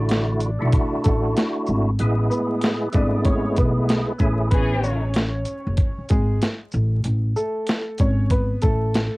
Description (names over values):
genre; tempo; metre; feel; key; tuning
hip hop, boom-bap hip-hop; 95 BPM; 4/4; swing 61% on 16ths; A major; A4 = 440 Hz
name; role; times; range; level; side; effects
warm upright piano; melody; 0.0-9.2 s; G#3 to D5; -28 LUFS; equal; high-pass filter, low-pass filter, cassette tape
percussive tonewheel organ; accompaniment; 0.0-4.5 s; A2 to G#4; -23 LUFS; equal; chorus vibrato, fast rotary speaker, cassette tape, high-pass filter, low-pass filter
upright bass; bass; 0.0-9.1 s; F#1 to B1; -22 LUFS; equal; none
dusty soul sampler-style drum kit; drums; 0.1-9.1 s; hi-hat, kick drum, shaker, snare drum; -21 LUFS; equal; overdrive, cassette tape
warm studio string section; stabs; 4.5-5.0 s; E3 to G#4; -29 LUFS; left 1 dB; high-pass filter, low-pass filter, cassette tape, analog delay
room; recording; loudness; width
light reverb; home recording on cassette, vinyl crackle; -19 LUFS; side -22 dB against mid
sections
0.0-9.2 A section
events
none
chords
0.0 Dadd9/A; 2.0 E; 4.2 Amaj7; 6.7 Amaj9